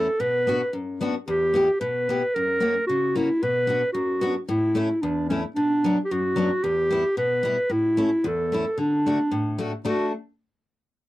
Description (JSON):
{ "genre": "alpine folk, alpine dance band", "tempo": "112 BPM", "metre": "2/4", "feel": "straight", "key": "D major", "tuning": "A4 = 440 Hz", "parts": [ { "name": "warm clarinet", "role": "melody", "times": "0.0-10.1 s", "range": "C#4 to B4", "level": "-22 LUFS", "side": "right 1 dB", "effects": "none" }, { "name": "picked steel-string acoustic guitar", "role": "accompaniment", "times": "0.0-10.1 s", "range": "E2 to G4", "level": "-27 LUFS", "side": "left 2 dB", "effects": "none" } ], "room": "light reverb", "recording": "dry, close 1970s-style studio recording", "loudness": "-21 LUFS", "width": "side -16 dB against mid", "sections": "0.0-9.9 A section; 9.9-10.9 B section", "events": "none", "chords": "0.2 Bm; 1.3 Em; 2.4 F#; 3.4 Bm; 4.5 A; 5.6 Bm; 6.6 Em; 7.7 A; 8.8 D" }